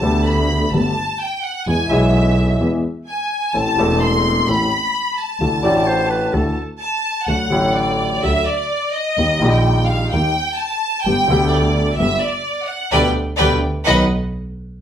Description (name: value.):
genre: tango.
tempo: 128 BPM.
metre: 4/4.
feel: rubato.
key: G major.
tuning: A4 = 440 Hz.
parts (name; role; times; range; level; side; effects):
clear studio violin section; second line; 0.0-14.0 s; B4 to C6; -19 LUFS; equal; none.
warm grand piano; accompaniment; 0.0-14.0 s; E1 to A4; -18 LUFS; left 1 dB; none.
dark double bass; bass; 0.0-14.0 s; E1 to E2; -21 LUFS; right 1 dB; none.
breathy clarinet; second line; 5.6-6.7 s; A4 to D5; -20 LUFS; right 1 dB; none.
room: wet studio reverb, RT60 0.7 s.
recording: band playing live in one room.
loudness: -15 LUFS.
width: side -9 dB against mid.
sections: 0.0-14.8 A section.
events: violin section solo 0.0-14.8; band accent 12.9-14.8.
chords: 0.0 Gadd9; 1.7 E; 3.5 Am; 5.4 Dadd9; 7.3 D; 9.2 Eb; 11.1 G; 12.9 G/D; 13.9 B.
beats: 0.26 0.73 1.20 | 1.67 2.14 2.61 3.08 | 3.54 4.01 4.47 4.94 | 5.41 5.88 6.34 6.82 | 7.29 7.76 8.23 8.71 | 9.18 9.65 10.12 10.59 | 11.05 11.52 11.99 12.46 | 12.93 13.40 13.87.